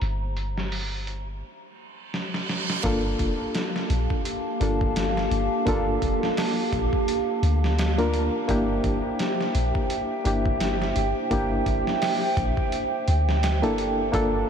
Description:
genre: trip hop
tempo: 85 BPM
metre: 4/4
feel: swing 57% on 16ths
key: unclear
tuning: A4 = 441 Hz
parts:
  - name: barky reed electric piano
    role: accompaniment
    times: 0.0-14.5 s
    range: Bb3 to Bb4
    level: -27 LUFS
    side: left 1 dB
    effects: overdrive, harmonic tremolo, tape echo
  - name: warbly tape-like pad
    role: sustained chords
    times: 0.0-14.5 s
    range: Bb3 to Bb5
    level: -28 LUFS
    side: right 2 dB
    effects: chorus, built-in reverb, vintage 12-bit sampler grit
  - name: soft 808-style bass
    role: bass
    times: 0.0-14.4 s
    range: F1 to D2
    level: -26 LUFS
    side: equal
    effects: none
  - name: trip hop sampler-style drum kit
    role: drums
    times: 0.0-14.3 s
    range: hi-hat, kick drum, snare drum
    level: -29 LUFS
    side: equal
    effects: low-pass filter on hats, low-pass filter on snare, low-pass filter on kick, low-pass filter on room
  - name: reverse cymbal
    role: sound effects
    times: 1.9-2.8 s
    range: none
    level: -35 LUFS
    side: right 5 dB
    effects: none
room: moderate huge ambient reverb, RT60 7.7 s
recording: dreamy mix soaked in reverb, low-pass filter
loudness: -22 LUFS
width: side -7 dB against mid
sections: 0.0-2.8 A section; 2.8-14.5 B section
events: filter sweep 0.0-2.8; reverse cymbal 1.9-2.8; drum fill 2.1-2.8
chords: 0.0 C7/G; 2.8 Gm9; 8.5 C7/G

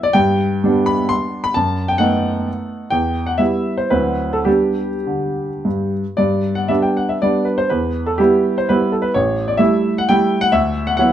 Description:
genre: classical, romantic triple-time dance for piano with dotted rhythms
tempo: 97-141 BPM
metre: 3/4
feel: rubato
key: G major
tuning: A4 = 439 Hz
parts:
  - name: clear baby grand piano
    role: solo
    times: 0.0-11.1 s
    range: A1 to C6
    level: -15 LUFS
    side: equal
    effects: none
room: moderate large studio reverb, RT60 1.2 s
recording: dark, warm production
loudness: -15 LUFS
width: side -10 dB against mid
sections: 0.0-6.2 A section; 6.2-11.1 A section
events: none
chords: 0.2 G; 1.5 B7/F#; 2.9 Em; 3.9 D9; 4.5 G; 7.7 Em; 9.1 A5; 10.5 D69

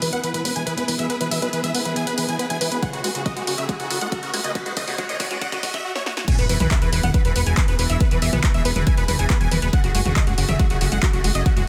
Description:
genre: uplifting trance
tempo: 139 BPM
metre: 4/4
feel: straight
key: E major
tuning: A4 = 439 Hz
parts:
  - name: big supersaw lead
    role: melody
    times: 0.0-11.6 s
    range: F#4 to G#5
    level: -30 LUFS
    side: equal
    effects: sidechain pumping, tape echo
  - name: clear studio string section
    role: sustained chords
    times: 0.0-11.7 s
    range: A3 to G#4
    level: -34 LUFS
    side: equal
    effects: sidechain pumping
  - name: liquid acid bass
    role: arpeggios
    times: 0.0-11.6 s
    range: C#3 to B3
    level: -31 LUFS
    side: equal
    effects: lush chorus, sidechain pumping, tape echo
  - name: fat analog bass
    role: bass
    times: 0.0-11.6 s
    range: E1 to B1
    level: -28 LUFS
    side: equal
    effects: sidechain pumping, high-pass filter
  - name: punchy analog drum machine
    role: drums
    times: 0.0-11.7 s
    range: crash cymbal, handclaps, hi-hat, snare drum, toms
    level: -28 LUFS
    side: equal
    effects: none
  - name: riser and sub drop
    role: sound effects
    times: 2.0-8.0 s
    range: none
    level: -37 LUFS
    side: equal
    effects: none
  - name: electronic kick drum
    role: drums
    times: 2.8-11.5 s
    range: none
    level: -23 LUFS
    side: equal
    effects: none
  - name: unison pluck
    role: second line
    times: 6.3-11.6 s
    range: F#4 to G#5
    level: -35 LUFS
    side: equal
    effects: cassette tape, sidechain pumping, tape echo
room: light reverb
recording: dense, heavily limited modern master, high-pass filter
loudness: -21 LUFS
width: mono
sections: 0.0-6.3 A section; 6.3-11.7 B section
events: build-up 0.0-6.3; filter sweep on acid bass 0.0-6.3; drum fill 2.8-5.8, 6.0-6.3; drop 6.3-11.7; impact 6.3-8.0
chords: 0.0 E; 2.8 F#madd9; 6.3 E; 9.7 F#madd9

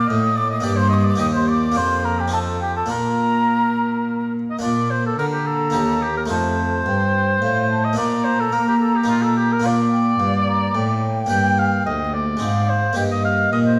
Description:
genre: classical, baroque-style sonata movement with continuo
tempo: 108 BPM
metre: 3/4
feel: straight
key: Bb major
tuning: A4 = 442 Hz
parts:
  - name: clear oboe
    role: melody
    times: 0.0-13.8 s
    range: F4 to G5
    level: -25 LUFS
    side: equal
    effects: none
  - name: mellow hollow concert flute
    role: second line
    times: 0.0-13.8 s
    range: Eb5 to Eb6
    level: -26 LUFS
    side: equal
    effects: none
  - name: harpsichord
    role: accompaniment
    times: 0.0-13.8 s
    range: D2 to G4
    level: -27 LUFS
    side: equal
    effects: none
  - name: dark cello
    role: bass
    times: 0.0-13.8 s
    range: D2 to Bb3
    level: -23 LUFS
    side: equal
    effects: none
room: wet recital hall reverb, RT60 1.6 s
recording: vinyl crackle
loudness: -19 LUFS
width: mono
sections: 0.0-4.6 A section; 4.6-13.8 B section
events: none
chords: 0.0 Bb; 0.7 Gm; 1.2 Eb; 1.8 Bb/F; 2.3 F7; 2.9 Bb; 5.8 Eb; 6.3 F7; 8.0 Bb; 9.1 Eb5/Bb; 9.6 Bb; 11.3 Gm; 12.4 Ab; 13.0 Eb/G

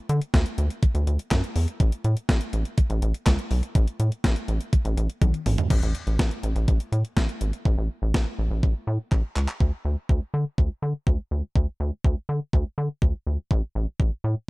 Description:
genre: synth-pop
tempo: 123 BPM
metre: 4/4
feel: straight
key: A major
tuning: A4 = 442 Hz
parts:
  - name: rubbery square bass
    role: bass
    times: 0.1-14.4 s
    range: G#1 to D3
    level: -24 LUFS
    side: equal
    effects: none
  - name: clean 12-bit digital drum machine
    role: drums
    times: 0.1-14.1 s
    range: crash cymbal, handclaps, hi-hat, kick drum, snare drum, toms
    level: -23 LUFS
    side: equal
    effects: overdrive
room: little or no reverb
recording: dark, warm production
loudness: -22 LUFS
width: side -22 dB against mid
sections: 0.0-5.7 A section; 5.7-9.6 B section; 9.6-14.5 C section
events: drum fill 5.2-5.7, 9.1-9.6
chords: none

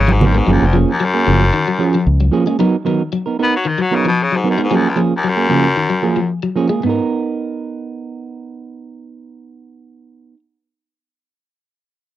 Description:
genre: afrobeat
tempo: 113 BPM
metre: 4/4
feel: straight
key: G# dorian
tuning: A4 = 440 Hz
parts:
  - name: raspy baritone saxophone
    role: melody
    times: 0.0-6.3 s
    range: C#2 to B3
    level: -17 LUFS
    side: left 3 dB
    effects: none
  - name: clean electric guitar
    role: arpeggios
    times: 0.0-7.0 s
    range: G#2 to G#3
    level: -20 LUFS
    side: left 5 dB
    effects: analog chorus
  - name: fingered electric bass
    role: bass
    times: 0.0-2.3 s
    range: E#1 to C#2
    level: -14 LUFS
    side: equal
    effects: none
  - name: semi-hollow electric guitar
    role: stabs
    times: 0.2-10.4 s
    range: E#3 to A#4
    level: -18 LUFS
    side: right 5 dB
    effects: spring reverb
room: light reverb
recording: dry, close 1970s-style studio recording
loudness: -13 LUFS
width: side -13 dB against mid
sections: 0.0-6.8 A section; 6.8-11.1 B section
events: baritone saxophone solo 0.0-6.8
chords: 0.5 F#maj9; 2.6 G#m9 (rootless); 4.7 F#maj9; 6.8 G#madd9 (rootless)

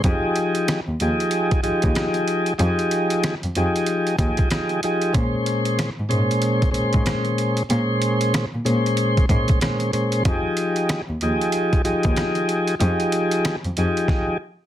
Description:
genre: hip hop, boom-bap hip-hop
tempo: 94 BPM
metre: 4/4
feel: swing 62% on 16ths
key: unclear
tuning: A4 = 443 Hz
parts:
  - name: tonewheel organ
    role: accompaniment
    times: 0.0-14.4 s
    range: Bb2 to C5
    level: -20 LUFS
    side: equal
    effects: slow rotary speaker, cassette tape
  - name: muted cello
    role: bass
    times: 0.0-13.9 s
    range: Eb2 to Bb2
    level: -24 LUFS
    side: equal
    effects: none
  - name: trip hop sampler-style drum kit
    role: drums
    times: 0.0-14.3 s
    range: hi-hat, kick drum, rim click, snare drum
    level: -23 LUFS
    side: equal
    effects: none
room: moderate studio reverb, RT60 0.5 s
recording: dense, heavily limited modern master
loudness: -19 LUFS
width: side -11 dB against mid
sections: 0.0-14.7 A section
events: none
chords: 0.0 Fm9; 5.1 Bbm9; 10.3 Fm9

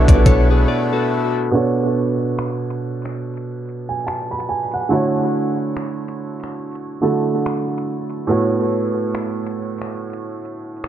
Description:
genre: contemporary R&B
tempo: 71 BPM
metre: 4/4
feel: swing 58% on 16ths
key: B minor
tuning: A4 = 436 Hz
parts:
  - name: felt-muted upright piano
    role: accompaniment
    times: 0.0-10.9 s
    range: A2 to B5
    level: -19 LUFS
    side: right 2 dB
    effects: tape echo
  - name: accordion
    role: sustained chords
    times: 0.0-1.5 s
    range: A3 to D4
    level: -26 LUFS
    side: left 5 dB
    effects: sidechain pumping
  - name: direct-recorded clean electric guitar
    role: arpeggios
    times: 0.0-1.5 s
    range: F#4 to D5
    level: -23 LUFS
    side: left 7 dB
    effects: tape echo
  - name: clean 808-style bass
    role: bass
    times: 0.0-0.7 s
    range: B1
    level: -14 LUFS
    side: equal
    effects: none
  - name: clean 12-bit digital drum machine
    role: drums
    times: 0.1-10.9 s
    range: finger snaps, hi-hat, kick drum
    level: -18 LUFS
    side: equal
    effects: none
room: light reverb, digital ambience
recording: echo-heavy mix, low-pass filter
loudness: -18 LUFS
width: side -10 dB against mid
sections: 0.0-1.5 A section; 1.5-10.9 B section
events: break 0.7-1.5; filter sweep 1.5-10.9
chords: 0.0 Bm11; 1.5 Bm9; 4.9 Dmaj9; 8.3 A69

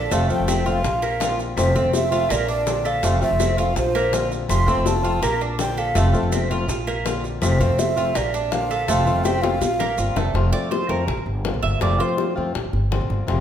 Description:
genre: latin, Cuban son and guajira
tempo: 164 BPM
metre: 4/4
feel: straight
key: F major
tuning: A4 = 441 Hz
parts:
  - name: breathy alto ocarina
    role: melody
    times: 0.0-10.2 s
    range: C5 to C6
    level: -24 LUFS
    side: right 2 dB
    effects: none
  - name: fingerpicked plugged-in swing-style acoustic guitar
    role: accompaniment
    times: 0.0-13.4 s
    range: C3 to F4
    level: -25 LUFS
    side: left 4 dB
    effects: none
  - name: Cuban tres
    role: arpeggios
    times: 0.0-12.3 s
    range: A3 to E5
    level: -27 LUFS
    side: right 5 dB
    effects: none
  - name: upright bass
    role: bass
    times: 0.0-13.4 s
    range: F1 to F2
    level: -23 LUFS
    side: equal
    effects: none
  - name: bongos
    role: percussion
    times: 0.1-13.4 s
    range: none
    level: -28 LUFS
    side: left 6 dB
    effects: none
  - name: maracas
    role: percussion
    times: 0.1-10.3 s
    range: none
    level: -34 LUFS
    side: right 6 dB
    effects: none
  - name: claves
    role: percussion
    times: 0.5-10.0 s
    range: none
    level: -36 LUFS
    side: right 1 dB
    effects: none
room: moderate large studio reverb, RT60 1.4 s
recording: minimal, uncompressed stereo recording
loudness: -18 LUFS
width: side -9 dB against mid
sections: 0.0-10.3 A section; 10.3-13.4 B section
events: drum fill 9.4-10.3; Cuban tres solo 10.3-13.4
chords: 0.1 F; 0.8 Bbadd9; 1.6 F; 2.3 Bbadd9; 3.0 F; 3.8 Bbadd9; 4.5 F; 5.2 Bbadd9; 6.0 F; 6.7 Bbadd9; 7.4 F; 8.2 Bbadd9; 8.9 F; 9.6 Bbadd9; 10.3 F; 11.1 Bbadd9; 11.8 F; 12.5 Bbadd9

